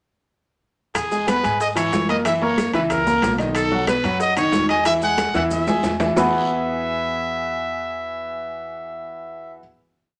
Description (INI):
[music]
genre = latin, salsa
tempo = 184 BPM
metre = 4/4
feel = straight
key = E major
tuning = A4 = 442 Hz
[part]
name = bongos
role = percussion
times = 0.9-6.2 s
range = none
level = -32 LUFS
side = equal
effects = none
[part]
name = bright trumpet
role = melody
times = 1.0-9.6 s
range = G#4 to F#5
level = -26 LUFS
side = equal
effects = none
[part]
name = upright bass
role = bass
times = 1.0-9.6 s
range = B1 to G#2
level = -35 LUFS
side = equal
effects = none
[part]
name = congas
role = percussion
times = 1.0-6.2 s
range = none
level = -32 LUFS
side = equal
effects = none
[part]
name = guiro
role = percussion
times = 1.0-6.2 s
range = none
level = -39 LUFS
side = equal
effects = none
[part]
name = maracas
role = percussion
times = 1.0-6.2 s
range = none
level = -41 LUFS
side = equal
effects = none
[part]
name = timbales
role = percussion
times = 1.0-6.2 s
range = none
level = -30 LUFS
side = equal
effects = none
[part]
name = warm concert grand piano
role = accompaniment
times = 1.1-9.6 s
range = D#3 to B5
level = -24 LUFS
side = equal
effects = none
[sound]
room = wet studio reverb, RT60 0.6 s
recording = none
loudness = -21 LUFS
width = mono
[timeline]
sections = 0.9-6.2 A section; 6.2-8.8 final chord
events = drum fill 5.2-6.2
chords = 0.9 Eadd9; 2.2 F#7; 3.6 Badd9; 4.9 Eadd9